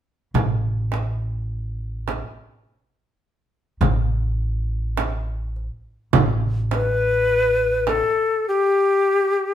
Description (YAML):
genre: Turkish makam ensemble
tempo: 104 BPM (eighths)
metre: 10/8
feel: straight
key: unclear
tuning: A4 = 440 Hz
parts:
  - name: upright bass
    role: bass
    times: 0.3-8.0 s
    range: A1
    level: -23 LUFS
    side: equal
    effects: none
  - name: frame drum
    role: percussion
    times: 0.3-8.1 s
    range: none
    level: -24 LUFS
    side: right 6 dB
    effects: none
  - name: darbuka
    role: percussion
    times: 0.4-8.1 s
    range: none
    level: -27 LUFS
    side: left 2 dB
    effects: none
  - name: breathy bright ney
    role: melody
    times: 6.7-9.5 s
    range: G4 to B4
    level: -18 LUFS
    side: left 2 dB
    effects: none
room: wet large studio reverb, RT60 0.9 s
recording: band playing live in one room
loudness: -19 LUFS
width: side -10 dB against mid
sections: 0.3-6.1 A section; 6.1-9.5 B section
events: none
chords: none